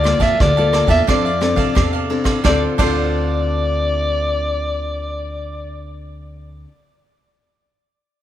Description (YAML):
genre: samba and choro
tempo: 88 BPM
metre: 4/4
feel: straight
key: D minor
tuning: A4 = 440 Hz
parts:
  - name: growling soprano saxophone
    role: melody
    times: 0.0-5.9 s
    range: D5 to E5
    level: -20 LUFS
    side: left 1 dB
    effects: tape echo
  - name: cavaquinho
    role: accompaniment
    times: 0.0-6.7 s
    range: D4 to A5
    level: -24 LUFS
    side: right 6 dB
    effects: none
  - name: nylon-string guitar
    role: accompaniment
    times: 0.0-6.7 s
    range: C3 to A4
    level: -23 LUFS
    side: left 3 dB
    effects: none
  - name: upright bass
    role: bass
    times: 0.0-6.6 s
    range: C2 to F2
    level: -22 LUFS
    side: equal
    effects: none
  - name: vintage brush drum kit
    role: drums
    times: 0.1-3.0 s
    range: crash cymbal, kick drum, ride cymbal, rim click, snare drum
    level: -21 LUFS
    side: equal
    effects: none
room: moderate large studio reverb, RT60 0.9 s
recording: none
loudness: -15 LUFS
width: side -12 dB against mid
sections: 0.0-2.4 A section; 2.4-5.2 B section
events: none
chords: 0.0 Bbmaj7/D; 1.1 F6; 2.4 Dm7